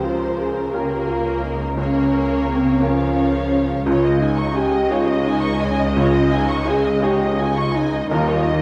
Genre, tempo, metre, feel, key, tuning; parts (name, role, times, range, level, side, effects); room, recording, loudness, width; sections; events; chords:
cinematic, emotional film score for orchestra; 57 BPM (dotted quarters); 6/8; rubato; A4 = 438 Hz
muted symphonic violin section; melody; 0.0-8.6 s; Bb4 to F5; -32 LUFS; equal
muted symphonic violin section; second line; 0.0-8.6 s; Bb4 to Db6; -29 LUFS; equal
clear baby grand piano; accompaniment; 0.0-8.6 s; Db2 to Db5; -28 LUFS; equal
muted symphonic viola section; accompaniment; 0.0-8.6 s; F3 to Bb3; -30 LUFS; equal
dark French horn section; sustained chords; 0.0-8.6 s; C4 to Ab4; -23 LUFS; equal
concert harp; arpeggios; 0.0-8.6 s; Db3 to Eb5; -32 LUFS; equal
muted symphonic cello section; bass; 0.0-8.6 s; Db3 to Eb3; -28 LUFS; equal
muted symphonic double bass section; bass; 0.0-8.6 s; Db2 to Eb2; -29 LUFS; equal
moderate recital hall reverb, RT60 1.3 s; -19 LUFS; mono
0.0-8.6 A section
0.0 Bbm/Db; 3.9 Dbsus2; 8.1 Eb7